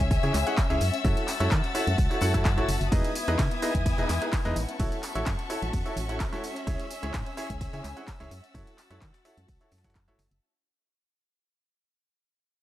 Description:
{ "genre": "piano house", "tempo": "128 BPM", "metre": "4/4", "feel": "swing 53% on 16ths", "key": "unclear", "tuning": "A4 = 439 Hz", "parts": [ { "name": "warm chamber violin section", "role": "sustained chords", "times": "0.0-10.4 s", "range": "A4 to A6", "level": "-36 LUFS", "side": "left 2 dB", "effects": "sidechain pumping" }, { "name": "organ-like FM bass", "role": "bass", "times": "0.0-10.4 s", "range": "E1 to D#3", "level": "-29 LUFS", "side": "equal", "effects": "tube saturation, sidechain pumping" }, { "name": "breakbeat sampler-style drum kit", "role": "drums", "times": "0.0-10.3 s", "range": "hi-hat, snare drum", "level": "-46 LUFS", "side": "right 1 dB", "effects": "none" }, { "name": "electronic kick drum", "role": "drums", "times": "0.0-10.1 s", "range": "none", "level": "-28 LUFS", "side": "equal", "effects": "none" }, { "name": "house drum kit", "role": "drums", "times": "0.0-10.4 s", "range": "handclaps, hi-hat, ride cymbal, tambourine", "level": "-37 LUFS", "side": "equal", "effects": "overdrive" }, { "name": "tambourine and congas", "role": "percussion", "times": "0.0-10.4 s", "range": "none", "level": "-42 LUFS", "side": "right 2 dB", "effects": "none" }, { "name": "warm studio string section", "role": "texture", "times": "0.0-10.4 s", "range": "B3 to D#6", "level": "-34 LUFS", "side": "left 5 dB", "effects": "sidechain pumping" }, { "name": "clear concert grand piano", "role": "riff", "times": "0.2-10.2 s", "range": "C#4 to F#5", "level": "-32 LUFS", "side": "right 1 dB", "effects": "sidechain pumping, analog delay" } ], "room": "digital ambience", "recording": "dry, gritty hardware recording, transformer saturation", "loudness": "-25 LUFS", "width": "side -14 dB against mid", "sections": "0.0-10.4 A section", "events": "drop 0.0-10.4; fade-out 2.9-10.4", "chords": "0.0 C#m; 0.8 F#m7; 2.9 Emaj7; 4.6 A6; 6.7 C#m; 8.3 F#m7", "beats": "0.11 0.58 | 1.05 1.51 1.98 2.45 | 2.92 3.39 3.86 4.33 | 4.80 5.26 5.73 6.20 | 6.67 7.14 7.61 8.08 | 8.55 9.02 9.48 9.95" }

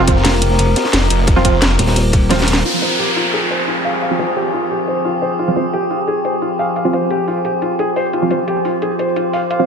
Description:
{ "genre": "dark technical drum and bass", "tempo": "175 BPM", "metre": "4/4", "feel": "straight", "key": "F minor", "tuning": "A4 = 440 Hz", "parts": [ { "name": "metallic inharmonic drone", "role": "sustained chords", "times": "0.0-9.7 s", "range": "F3 to C5", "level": "-19 LUFS", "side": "left 1 dB", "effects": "chorus, built-in reverb, sidechain pumping" }, { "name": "orchestra-hit-like synth stab", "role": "stabs", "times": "0.0-9.7 s", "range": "F3 to F4", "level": "-20 LUFS", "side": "right 3 dB", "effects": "built-in reverb, tape echo" }, { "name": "phased detuned saw bass", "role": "bass", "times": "0.0-1.8 s", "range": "F1", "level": "-15 LUFS", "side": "equal", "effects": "phaser, tube saturation" }, { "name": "crunchy breakbeat drum kit", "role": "drums", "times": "0.1-2.6 s", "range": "hi-hat, ride cymbal, snare drum", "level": "-24 LUFS", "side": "equal", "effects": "high-pass filter on cymbals, high-pass filter on hats, high-pass filter on snare, high-pass filter on room" }, { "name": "drum and bass drum kit", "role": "drums", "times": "0.1-9.6 s", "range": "hi-hat, snare drum", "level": "-18 LUFS", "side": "equal", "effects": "low-pass filter on hats, low-pass filter on snare, low-pass filter on room" }, { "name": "electronic kick drum", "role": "drums", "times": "0.1-2.2 s", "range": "none", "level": "-14 LUFS", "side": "equal", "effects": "overdrive" }, { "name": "pulsing pluck wobble bass", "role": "bass", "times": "0.2-2.6 s", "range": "Eb1 to F1", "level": "-15 LUFS", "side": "equal", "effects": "chorus" }, { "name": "felt-muted upright piano", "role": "arpeggios", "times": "2.6-9.6 s", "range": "F4 to F5", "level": "-20 LUFS", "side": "left 1 dB", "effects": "sidechain pumping, low-pass filter, tape echo" }, { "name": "downlifter", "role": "sound effects", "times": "2.6-5.4 s", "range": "none", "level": "-20 LUFS", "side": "equal", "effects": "none" } ], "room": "moderate digital room reverb, RT60 1.1 s, studio reverb", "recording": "none", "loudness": "-14 LUFS", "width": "side -6 dB against mid", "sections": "0.0-2.6 A section; 2.6-9.7 B section", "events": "drum fill 2.3-2.6; filter sweep on drum 2.6-9.7; filter sweep on felt piano 2.6-9.7; filter sweep on synth stab 2.6-9.7", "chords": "0.0 F5; 2.6 Fm", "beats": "0.25 0.59 0.93 | 1.28 1.62 1.96 2.31 | 2.65 2.99 3.33 3.68 | 4.02 4.36 4.71 5.05 | 5.39 5.73 6.08 6.42 | 6.76 7.11 7.45 7.79 | 8.13 8.48 8.82 9.16 | 9.51" }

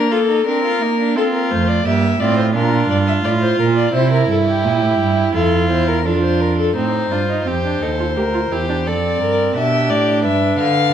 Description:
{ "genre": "classical, baroque-style fugue for string quartet", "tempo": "86 BPM", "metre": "4/4", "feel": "straight", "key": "Bb major", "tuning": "A4 = 440 Hz", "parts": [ { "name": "warm violin", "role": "melody", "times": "0.0-10.9 s", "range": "G4 to F5", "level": "-20 LUFS", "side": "left 5 dB", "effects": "none" }, { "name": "rich violin", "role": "second line", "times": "0.0-10.9 s", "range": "D4 to B4", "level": "-22 LUFS", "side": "equal", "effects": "none" }, { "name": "warm viola", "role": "accompaniment", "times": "0.0-10.9 s", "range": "A3 to G4", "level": "-20 LUFS", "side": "right 4 dB", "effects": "none" }, { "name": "rich cello", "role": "bass", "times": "1.5-10.9 s", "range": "D2 to D3", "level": "-19 LUFS", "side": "right 4 dB", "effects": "none" } ], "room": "wet stone room reverb, RT60 1.3 s", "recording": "none", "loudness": "-14 LUFS", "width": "side -9 dB against mid", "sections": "0.0-6.8 A section; 6.8-10.9 B section", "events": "none", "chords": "0.0 Bb; 1.2 F; 2.6 Bb; 4.0 C; 5.4 F; 6.8 F7; 8.2 Bb/D; 9.6 G7", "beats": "0.47 | 1.17 1.87 2.56 3.26 | 3.95 4.65 5.35 6.06 | 6.76 7.47 8.16 8.86 | 9.55 10.24 10.93" }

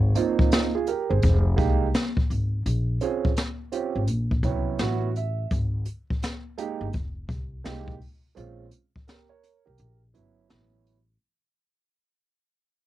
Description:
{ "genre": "hip hop, jazz-hop", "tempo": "84 BPM", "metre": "4/4", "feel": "swing 63% on 16ths", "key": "unclear", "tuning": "A4 = 439 Hz", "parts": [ { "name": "upright bass", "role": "bass", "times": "0.0-11.2 s", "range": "F1 to C2", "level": "-25 LUFS", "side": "left 1 dB", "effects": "none" }, { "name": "dark grand piano", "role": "accompaniment", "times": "0.1-11.0 s", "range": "Gb3 to G5", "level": "-28 LUFS", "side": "right 8 dB", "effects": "cassette tape" }, { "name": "jazz brush drum kit", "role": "drums", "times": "0.2-11.1 s", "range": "hi-hat, kick drum, snare drum", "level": "-26 LUFS", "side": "left 1 dB", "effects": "cassette tape" } ], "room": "little or no reverb", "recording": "home recording on cassette", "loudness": "-23 LUFS", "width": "side -14 dB against mid", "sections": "0.0-11.2 A section", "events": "fade-out 0.0-11.2; grand piano fill 4.1-5.5; break 9.8-11.2", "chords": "0.0 Ab69; 1.2 Fm11; 2.7 Bbm7; 4.1 Bbdim7; 4.8 A69; 5.5 Absus2; 6.9 Fm11; 8.4 Bbm7; 9.8 Gdim7; 10.5 A69", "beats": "0.51 1.22 1.94 | 2.65 3.37 4.08 4.79 | 5.51 6.22 6.94 7.65 | 8.37 9.08 9.79 10.51" }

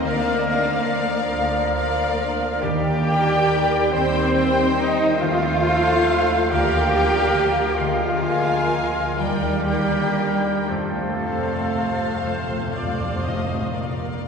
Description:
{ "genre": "classical", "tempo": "39-47 BPM (dotted quarters)", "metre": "6/8", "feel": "rubato", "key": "Bb major", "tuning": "A4 = 444 Hz", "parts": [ { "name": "warm symphonic violin section", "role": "melody", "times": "0.0-14.3 s", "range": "F5 to Ab5", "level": "-29 LUFS", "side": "left 4 dB", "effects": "none" }, { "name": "clear clarinet", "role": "second line", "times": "0.0-13.2 s", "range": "G4 to G5", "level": "-30 LUFS", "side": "equal", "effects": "none" }, { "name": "concert flute", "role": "second line", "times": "0.0-13.2 s", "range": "G4 to G5", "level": "-30 LUFS", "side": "equal", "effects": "none" }, { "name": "warm oboe", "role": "second line", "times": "0.0-13.4 s", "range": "Bb4 to D5", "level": "-31 LUFS", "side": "equal", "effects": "none" }, { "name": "warm symphonic violin section", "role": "second line", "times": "0.0-14.3 s", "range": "Bb4 to F5", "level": "-33 LUFS", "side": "left 4 dB", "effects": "none" }, { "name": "rich studio viola section", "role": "accompaniment", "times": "0.0-13.7 s", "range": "A4 to Eb5", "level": "-31 LUFS", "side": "right 1 dB", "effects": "none" }, { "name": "warm bassoon", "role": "accompaniment", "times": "0.0-13.4 s", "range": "F3 to Bb3", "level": "-30 LUFS", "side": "equal", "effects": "none" }, { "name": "dark French horn section", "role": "sustained chords", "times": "0.0-14.3 s", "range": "G3 to F5", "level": "-32 LUFS", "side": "left 1 dB", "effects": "none" }, { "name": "concert harp", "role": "arpeggios", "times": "0.0-14.3 s", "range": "F2 to Bb5", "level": "-31 LUFS", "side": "left 5 dB", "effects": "none" }, { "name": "warm studio cello section", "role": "bass", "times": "0.0-14.3 s", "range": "Bb2 to G4", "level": "-24 LUFS", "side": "right 2 dB", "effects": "none" }, { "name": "warm trombone section", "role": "sustained chords", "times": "0.1-13.4 s", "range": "C3 to C4", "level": "-32 LUFS", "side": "right 1 dB", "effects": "none" }, { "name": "warm symphonic double bass section", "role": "bass", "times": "0.1-14.3 s", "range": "Bb1 to F2", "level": "-28 LUFS", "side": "right 2 dB", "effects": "none" }, { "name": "timpani", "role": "percussion", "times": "10.7-14.3 s", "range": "F2 to Bb2", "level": "-29 LUFS", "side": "left 1 dB", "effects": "none" } ], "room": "wet cathedral reverb, RT60 5.0 s", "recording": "recorded in a church or concert hall", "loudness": "-18 LUFS", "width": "side -6 dB against mid", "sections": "0.0-13.7 A section", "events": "timpani fill 10.7-13.7", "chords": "0.0 Bb/D; 2.6 Ebmaj7; 3.9 Cm/Eb; 5.2 F7/Eb; 6.5 Bb/D; 7.8 Bb7/D; 9.2 Ebmaj7; 10.7 F; 13.7 Bb", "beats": "| 0.04 1.32 | 2.61 3.92 | 5.21 6.51 | 7.80 9.19 | 10.69 12.22 | 13.71" }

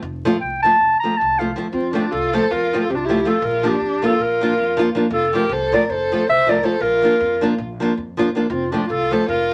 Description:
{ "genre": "balkan folk", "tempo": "318 BPM (eighths)", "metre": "9/8", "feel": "straight", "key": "F major", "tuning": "A4 = 440 Hz", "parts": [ { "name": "dark clarinet", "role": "melody", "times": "0.0-9.5 s", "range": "F4 to Bb5", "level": "-21 LUFS", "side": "equal", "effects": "none" }, { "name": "upright bass", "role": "bass", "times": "0.0-9.5 s", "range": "F1 to F2", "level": "-35 LUFS", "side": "equal", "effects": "none" }, { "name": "nylon-string guitar", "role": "accompaniment", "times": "0.3-9.5 s", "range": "F3 to F4", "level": "-23 LUFS", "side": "equal", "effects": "none" }, { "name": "warm violin", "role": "second line", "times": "1.7-9.5 s", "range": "C4 to C5", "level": "-26 LUFS", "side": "equal", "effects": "none" } ], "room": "moderate small room reverb, RT60 0.5 s", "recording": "vinyl crackle", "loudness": "-19 LUFS", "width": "mono", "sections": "0.0-1.7 A section; 1.7-9.5 B section", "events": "clarinet solo 0.0-1.7", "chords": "0.0 F; 3.4 Bb; 5.1 F; 6.8 Bb; 8.5 F", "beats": "| 0.03 0.21 0.40 0.59 0.78 0.97 1.16 1.34 1.53 | 1.72 1.91 2.10 2.28 2.47 2.66 2.85 3.04 3.22 | 3.41 3.60 3.79 3.98 4.17 4.35 4.54 4.73 4.92 | 5.11 5.30 5.49 5.67 5.86 6.05 6.24 6.43 6.62 | 6.81 7.00 7.19 7.38 7.57 7.75 7.94 8.13 8.32 | 8.51 8.70 8.89 9.08 9.27 9.46" }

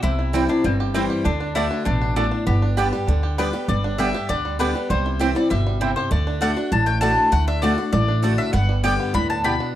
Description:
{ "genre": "bluegrass", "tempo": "198 BPM", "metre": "4/4", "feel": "straight", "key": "G major", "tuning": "A4 = 443 Hz", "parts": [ { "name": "bluegrass banjo", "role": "melody", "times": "0.0-9.8 s", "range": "D3 to G4", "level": "-30 LUFS", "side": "right 5 dB", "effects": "none" }, { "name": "mandolin", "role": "melody", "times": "0.0-9.7 s", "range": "C4 to B5", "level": "-25 LUFS", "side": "left 3 dB", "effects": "none" }, { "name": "picked steel-string acoustic guitar", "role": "accompaniment", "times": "0.0-9.7 s", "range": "G2 to G4", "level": "-25 LUFS", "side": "left 2 dB", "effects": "none" }, { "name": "upright bass", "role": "bass", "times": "0.0-9.6 s", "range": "G1 to D2", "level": "-22 LUFS", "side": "equal", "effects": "none" }, { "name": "mandolin", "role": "stabs", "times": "0.3-9.5 s", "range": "A3 to A5", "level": "-27 LUFS", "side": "right 5 dB", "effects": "tape echo" } ], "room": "studio reverb", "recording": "dry, close 1970s-style studio recording", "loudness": "-18 LUFS", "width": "side -12 dB against mid", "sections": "0.0-3.7 A section; 3.7-9.8 A section", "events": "none", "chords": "0.0 C; 1.3 D; 2.5 G; 4.9 C; 6.1 D; 8.5 G", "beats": "| 0.04 0.34 0.64 0.95 | 1.25 1.56 1.86 2.17 | 2.47 2.77 3.08 3.38 | 3.69 3.99 4.29 4.60 | 4.90 5.20 5.51 5.81 | 6.11 6.42 6.72 7.02 | 7.33 7.63 7.93 8.23 | 8.54 8.84 9.14 9.45 | 9.75" }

